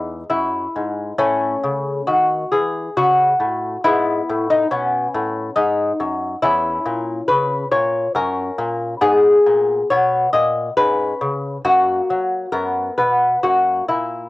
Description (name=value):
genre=classical, baroque-style dance for lute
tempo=68 BPM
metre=3/4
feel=rubato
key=unclear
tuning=A4 = 440 Hz
part: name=lute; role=solo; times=0.0-14.3 s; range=E2 to D#5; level=-16 LUFS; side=left 1 dB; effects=cassette tape
room=light reverb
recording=home recording on cassette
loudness=-16 LUFS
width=side -19 dB against mid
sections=0.0-14.3 A section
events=none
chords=0.0 C#m (rootless); 1.2 A; 3.9 F#m11; 6.4 C#m/E; 8.2 F#; 9.0 G#m; 10.8 C#5/G#; 11.7 F#; 12.5 B5/F#; 13.4 F#7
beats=0.31 | 1.20 2.09 2.98 | 3.86 4.72 5.58 | 6.44 7.30 8.16 | 9.03 9.91 10.78 | 11.65 12.53 13.44